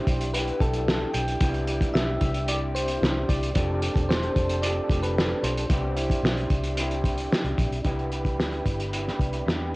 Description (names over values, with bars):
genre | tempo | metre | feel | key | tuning
indie pop, bedroom pop | 112 BPM | 4/4 | straight | C major | A4 = 441 Hz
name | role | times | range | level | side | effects
soft electric-piano-like synth keys | melody | 0.0-7.3 s | A4 to G5 | -32 LUFS | equal | lush chorus, cassette tape, tape echo
electric guitar through a small old amp | accompaniment | 0.0-9.8 s | C3 to G4 | -35 LUFS | left 1 dB | analog chorus, warbly pitch drift, cassette tape
mellow tonewheel organ | accompaniment | 0.0-9.8 s | C4 to B4 | -31 LUFS | right 1 dB | overdrive, fast rotary speaker, cassette tape
vintage muted fingered electric bass | bass | 0.1-9.7 s | E1 to E2 | -29 LUFS | equal | transformer saturation
cloth-damped thuddy drum kit | drums | 0.1-9.6 s | hi-hat, kick drum, snare drum | -26 LUFS | equal | vintage 12-bit sampler grit, cassette tape
room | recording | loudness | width
light reverb | home recording on cassette | -23 LUFS | side -21 dB against mid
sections
0.0-7.8 A section; 7.8-9.8 B section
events
none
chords
0.0 Cmaj7; 3.6 F69; 5.7 Cmaj7